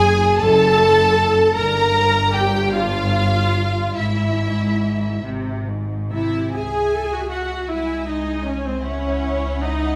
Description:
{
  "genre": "classical, slow romantic movement for string orchestra",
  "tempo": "45-54 BPM (dotted quarters)",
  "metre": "6/8",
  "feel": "rubato",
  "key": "unclear",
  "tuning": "A4 = 439 Hz",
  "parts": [
    { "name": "rich symphonic violin section", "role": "melody", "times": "0.0-10.0 s", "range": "E5 to Bb5", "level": "-26 LUFS", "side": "equal", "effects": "none" },
    { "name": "warm studio violin section", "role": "second line", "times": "0.0-10.0 s", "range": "E4 to G#5", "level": "-25 LUFS", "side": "equal", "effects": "none" },
    { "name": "rich studio viola section", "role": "accompaniment", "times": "0.0-10.0 s", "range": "B#3 to Bb4", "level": "-24 LUFS", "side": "equal", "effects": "none" },
    { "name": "rich symphonic cello section", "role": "bass", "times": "0.0-10.0 s", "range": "F#2 to E4", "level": "-27 LUFS", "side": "equal", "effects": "none" },
    { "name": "warm symphonic double bass section", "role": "bass", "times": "0.0-10.0 s", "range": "F#1 to C#2", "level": "-27 LUFS", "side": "equal", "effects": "none" }
  ],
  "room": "wet recital hall reverb, RT60 1.4 s",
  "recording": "recorded in a church or concert hall",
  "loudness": "-19 LUFS",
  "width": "mono",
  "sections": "0.0-6.5 A section; 6.5-10.0 B section",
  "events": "none",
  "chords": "0.0 F#madd9; 1.5 Gm7; 4.0 E/G#; 5.2 G#; 6.5 C#m; 7.7 G#/B#; 8.8 C#m"
}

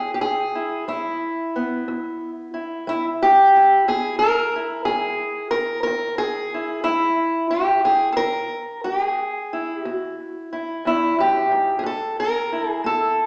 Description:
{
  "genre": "acoustic country blues, solo or duo",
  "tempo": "60 BPM (dotted quarters)",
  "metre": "12/8",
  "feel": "straight",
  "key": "unclear",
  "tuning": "A4 = 440 Hz",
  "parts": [
    { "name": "fingerpicked steel-string acoustic guitar", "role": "solo", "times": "0.0-13.3 s", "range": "E2 to A#4", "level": "-21 LUFS", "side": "equal", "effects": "none" }
  ],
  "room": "wet recital hall reverb, RT60 1.4 s",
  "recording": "recorded in a church or concert hall, small speaker sound",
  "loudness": "-21 LUFS",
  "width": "mono",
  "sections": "0.0-13.3 A section",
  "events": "none",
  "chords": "0.0 E; 11.9 A5"
}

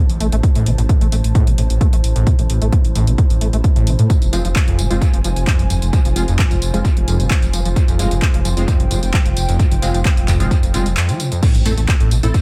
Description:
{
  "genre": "driving peak-time techno",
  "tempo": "131 BPM",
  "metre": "4/4",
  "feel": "straight",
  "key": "unclear",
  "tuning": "A4 = 440 Hz",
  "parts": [
    { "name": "airy breathy pad", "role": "texture", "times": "0.0-11.4 s", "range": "E4 to A5", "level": "-32 LUFS", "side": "equal", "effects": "chorus, sidechain pumping" },
    { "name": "dark detuned saw bass", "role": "bass", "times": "0.1-12.3 s", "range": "F1 to A2", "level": "-20 LUFS", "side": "equal", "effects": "sidechain pumping" },
    { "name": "punchy analog drum machine", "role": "drums", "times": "0.1-12.4 s", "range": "crash cymbal, handclaps, hi-hat, tambourine", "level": "-28 LUFS", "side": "equal", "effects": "dub echo" },
    { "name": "overdriven acid bass", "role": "riff", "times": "0.2-12.3 s", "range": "F2 to A3", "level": "-24 LUFS", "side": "equal", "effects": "distortion, subtle chorus, sidechain pumping, analog delay" },
    { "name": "electronic kick drum", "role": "drums", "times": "0.4-12.4 s", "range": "none", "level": "-17 LUFS", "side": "equal", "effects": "none" },
    { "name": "rave stab", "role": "stabs", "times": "4.3-12.3 s", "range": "Ab3 to A4", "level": "-28 LUFS", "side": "equal", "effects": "chorus, built-in reverb, sidechain pumping, analog delay" },
    { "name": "sub drop", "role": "sound effects", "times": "11.4-12.4 s", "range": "none", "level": "-27 LUFS", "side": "equal", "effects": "none" }
  ],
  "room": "little or no reverb",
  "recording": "echo-heavy mix",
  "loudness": "-16 LUFS",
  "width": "mono",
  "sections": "0.0-11.4 A section",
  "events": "fade-in on analog synth pad 0.0-11.4; break 11.0-11.4; impact 11.4-12.4",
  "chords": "0.0 Am; 4.1 Fm; 11.4 Am"
}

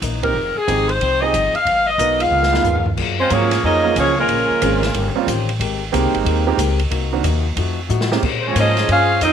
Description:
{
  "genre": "jazz, big band swing",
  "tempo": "183 BPM",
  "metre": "4/4",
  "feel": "swing 64% on 8ths",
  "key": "unclear",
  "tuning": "A4 = 440 Hz",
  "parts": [
    { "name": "fingerpicked plugged-in swing-style acoustic guitar", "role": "accompaniment", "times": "0.0-9.3 s", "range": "Gb2 to C5", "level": "-26 LUFS", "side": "left 10 dB", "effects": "none" },
    { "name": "upright bass", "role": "bass", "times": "0.0-9.3 s", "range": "F1 to Bb2", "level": "-21 LUFS", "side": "left 1 dB", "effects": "none" },
    { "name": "open jazz drum kit", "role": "drums", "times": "0.0-9.3 s", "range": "crash cymbal, hi-hat, kick drum, ride cymbal, snare drum, toms", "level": "-25 LUFS", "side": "right 1 dB", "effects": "none" },
    { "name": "edgy saxophone section", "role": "melody", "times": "0.2-5.1, 8.4-9.3 s", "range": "Ab3 to F5", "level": "-17 LUFS", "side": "left 2 dB", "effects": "none" },
    { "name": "clear grand piano", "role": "accompaniment", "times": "0.2-8.2 s", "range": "Eb3 to Cb5", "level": "-23 LUFS", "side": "right 12 dB", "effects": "none" },
    { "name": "clear trombone section", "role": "second line", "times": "2.2-5.1, 8.5-9.3 s", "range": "Db3 to Ab4", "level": "-22 LUFS", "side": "right 11 dB", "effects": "none" }
  ],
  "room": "light reverb, studio reverb",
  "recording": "1960s-style stereo with parts hard left and right",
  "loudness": "-15 LUFS",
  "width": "side -8 dB against mid",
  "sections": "0.0-3.0 A section; 3.0-9.3 B section",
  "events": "band accent 0.2; drum fill 2.3-3.0, 7.9-8.2",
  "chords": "0.3 Fm7; 1.7 Abm7; 2.3 Db13; 3.0 Gbmaj9; 4.3 Bbm7; 4.9 Eb13; 5.6 Abmaj9; 6.9 Cm7b5; 7.6 F7b9; 8.2 Bbm9"
}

